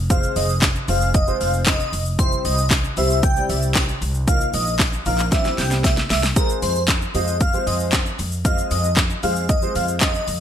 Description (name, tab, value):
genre	dance-pop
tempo	115 BPM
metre	4/4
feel	straight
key	F dorian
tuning	A4 = 440 Hz
part	upright bass	bass	0.0-10.4 s	F1 to F2	-23 LUFS	equal	sidechain pumping
part	airy dreamy lead	melody	0.1-10.4 s	Bb4 to G5	-24 LUFS	equal	chorus, ping-pong delay
part	warm concert grand piano	accompaniment	0.1-10.1 s	F3 to Eb5	-27 LUFS	equal	ensemble chorus, sidechain pumping
part	house drum kit	drums	0.1-10.4 s	handclaps, hi-hat, kick drum, shaker, snare drum	-20 LUFS	equal	overdrive, gated reverb
part	tambourine	percussion	0.6-6.0 s	none	-33 LUFS	left 15 dB	none
room	small room ambience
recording	bright 1980s-style digital production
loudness	-17 LUFS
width	side -9 dB against mid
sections	0.0-6.4 A section; 6.4-10.4 A section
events	drop 0.0-6.4, 6.4-10.4; drum fill 5.3-6.4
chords	0.0 Fm; 2.2 C; 4.3 Bbsus4; 5.3 Cadd9; 6.4 Fm